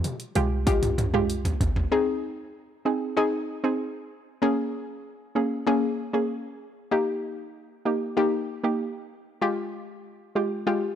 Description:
dancehall; 96 BPM; 4/4; straight; Ab major; A4 = 441 Hz
soft round pluck; accompaniment; 0.0-10.8 s; Ab3 to Ab4; -25 LUFS; equal; chorus, sidechain pumping
pop drum kit; drums; 0.0-1.9 s; hi-hat, kick drum, toms; -26 LUFS; equal
clean 808-style bass; bass; 0.4-1.9 s; Ab1 to C2; -28 LUFS; equal
light reverb; dry, gritty hardware recording, transformer saturation; -24 LUFS; side -9 dB against mid
0.0-1.9 A section; 1.9-11.0 B section
drum fill 0.0-1.9
0.0 Fmadd9; 1.9 Ab; 4.4 Bbm7; 6.9 Eb; 9.4 Fmadd9

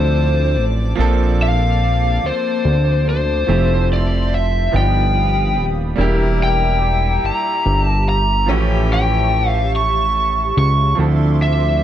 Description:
slow six-eight R&B; 48 BPM (dotted quarters); 6/8; straight; A4 = 441 Hz
lead guitar through a small cranked amp; melody; 0.0-11.8 s; C5 to C#6; -19 LUFS; left 1 dB; overdrive
clear baby grand piano; accompaniment; 0.0-11.8 s; F3 to A4; -24 LUFS; right 7 dB
hollow soft pad; sustained chords; 0.0-11.8 s; F3 to Eb6; -28 LUFS; left 2 dB; chorus, phaser
fat analog bass; bass; 0.0-11.8 s; Eb1 to D2; -16 LUFS; equal
warm horn section; stabs; 6.0-9.7 s; Bb2 to Bb4; -25 LUFS; left 6 dB
light reverb; -14 LUFS; side -11 dB against mid
0.0-11.8 A section
0.0 Dm7; 1.0 Bbmaj7; 3.5 Fmaj7; 4.7 G7b13; 6.0 Em7b5; 8.5 A7b13; 11.0 Dm9

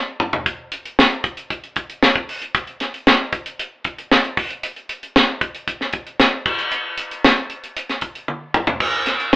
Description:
pop; 115 BPM; 4/4; straight
tight funk drum kit; drums; 0.2-9.4 s; crash cymbal, hi-hat, kick drum, snare drum, toms; -16 LUFS; equal
wet studio ambience, RT60 0.5 s; band playing live in one room, telephone sound; -17 LUFS; side -19 dB against mid
0.0-8.8 A section
drum fill 0.0-0.5, 8.3-8.8

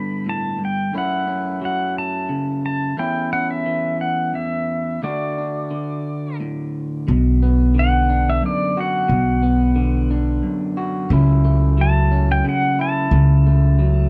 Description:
acoustic folk-pop ballad; 88 BPM; 3/4; straight; A4 = 443 Hz
pedal steel guitar; melody; 0.0-14.1 s; D5 to B5; -25 LUFS; equal
electric guitar through a small old amp; accompaniment; 0.0-14.1 s; D2 to A4; -24 LUFS; equal
upright bass; bass; 7.1-14.1 s; B1 to C#2; -18 LUFS; equal
small room ambience; dry, close 1970s-style studio recording; -19 LUFS; mono
0.0-7.1 A section; 7.1-14.1 B section
0.0 Gadd9; 0.9 F#m7; 3.0 A/E; 5.0 D; 7.1 Bm; 11.1 F#m7/C#

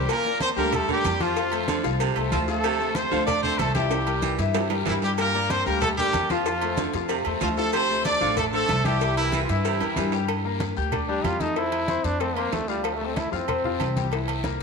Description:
latin, salsa; 188 BPM; 4/4; straight; A4 = 439 Hz
brilliant horn section; melody; 0.0-10.1 s; E3 to D5; -26 LUFS; right 1 dB
bright baby grand piano; accompaniment; 0.0-14.6 s; E3 to G6; -29 LUFS; left 9 dB
upright bass; bass; 0.0-14.6 s; A1 to G2; -29 LUFS; equal
raspy baritone saxophone; second line; 0.1-10.1 s; Bb2 to F3; -31 LUFS; right 10 dB; tape echo
agogo bells and timbales; percussion; 0.1-14.6 s; -33 LUFS; right 13 dB
congas; percussion; 0.1-14.6 s; -34 LUFS; equal
cowbell; percussion; 0.1-14.6 s; -35 LUFS; left 10 dB
guiro; percussion; 0.1-14.6 s; -41 LUFS; left 12 dB
maracas; percussion; 0.1-10.3 s; -45 LUFS; right 16 dB
brilliant trombone; melody; 11.1-14.1 s; F3 to F4; -28 LUFS; equal
wet echo chamber reverb, RT60 2.1 s; 1960s-style stereo with parts hard left and right; -22 LUFS; side -4 dB against mid
0.1-10.3 A section; 10.3-14.6 B section
drum fill 3.9-5.2, 9.8-10.3; trombone solo 10.3-14.6
0.1 Gm7; 1.4 F; 2.6 Dm7; 3.9 C7; 5.2 Gm7; 6.5 F; 7.7 Dm7; 9.0 C7; 10.3 Gm7; 11.6 F; 12.8 Dm7; 14.1 C7

